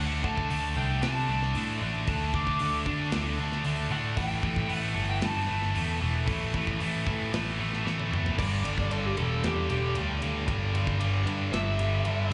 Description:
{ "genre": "hard rock", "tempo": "114 BPM", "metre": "4/4", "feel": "straight", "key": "unclear", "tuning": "A4 = 439 Hz", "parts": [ { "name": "lead guitar through a small cranked amp", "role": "melody", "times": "0.0-12.3 s", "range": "G4 to D6", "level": "-37 LUFS", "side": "equal", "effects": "overdrive, slapback echo, tape echo" }, { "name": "heavy high-gain guitar", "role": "riff", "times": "0.0-12.3 s", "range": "G2 to D4", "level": "-33 LUFS", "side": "equal", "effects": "distortion" }, { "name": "picked electric bass", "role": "bass", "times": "0.0-12.3 s", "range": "E1 to D3", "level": "-32 LUFS", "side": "equal", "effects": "none" }, { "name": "tight metal drum kit", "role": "drums", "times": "0.2-12.2 s", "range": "crash cymbal, hi-hat, kick drum, ride cymbal, snare drum, toms", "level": "-38 LUFS", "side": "equal", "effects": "none" } ], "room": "studio ambience", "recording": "live gig heard through the venue's PA, club reverb, nothing above 10.4 kHz", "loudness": "-29 LUFS", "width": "mono", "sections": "0.0-8.4 A section; 8.4-12.3 B section", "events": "drum fill 7.8-8.4; lead electric guitar solo 8.4-12.3", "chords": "0.0 D5; 4.2 A5; 8.4 G5", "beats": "0.50 1.02 1.55 | 2.07 2.60 3.12 3.65 | 4.17 4.70 5.22 5.75 | 6.27 6.80 7.32 7.85 | 8.37 8.90 9.42 9.95 | 10.47 11.00 11.53 12.05" }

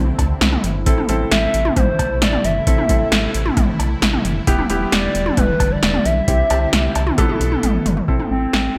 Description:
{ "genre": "synth-pop", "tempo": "133 BPM", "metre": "4/4", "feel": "straight", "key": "A minor", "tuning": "A4 = 440 Hz", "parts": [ { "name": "string machine, cellos", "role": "sustained chords", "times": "0.0-8.1 s", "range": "B2 to E4", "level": "-28 LUFS", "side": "equal", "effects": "ensemble chorus" }, { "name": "rubbery square bass", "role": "bass", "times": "0.0-8.8 s", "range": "E1 to D2", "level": "-24 LUFS", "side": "equal", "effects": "none" }, { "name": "electro analog drum machine", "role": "drums", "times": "0.2-8.6 s", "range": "cowbell, hi-hat, kick drum, snare drum, toms", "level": "-20 LUFS", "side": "equal", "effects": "overdrive, gated reverb" }, { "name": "warm baby grand piano", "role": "accompaniment", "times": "0.9-8.6 s", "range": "B3 to A4", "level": "-26 LUFS", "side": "equal", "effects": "subtle chorus" }, { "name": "hollow clarinet-like synth lead", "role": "melody", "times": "1.3-8.8 s", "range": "C4 to E5", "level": "-23 LUFS", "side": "equal", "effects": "chorus, delay" } ], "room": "light reverb", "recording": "bright 1980s-style digital production", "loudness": "-17 LUFS", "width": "mono", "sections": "0.0-8.1 A section", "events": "drum fill 7.2-8.1", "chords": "0.0 Cadd9; 0.9 Am; 4.5 Em7; 6.3 Cadd9; 7.2 Asus2; 8.1 Am", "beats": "0.41 | 0.86 1.31 1.77 2.22 | 2.67 3.12 3.57 4.02 | 4.47 4.92 5.38 5.83 | 6.28 6.73 7.18 7.63 | 8.08 8.53" }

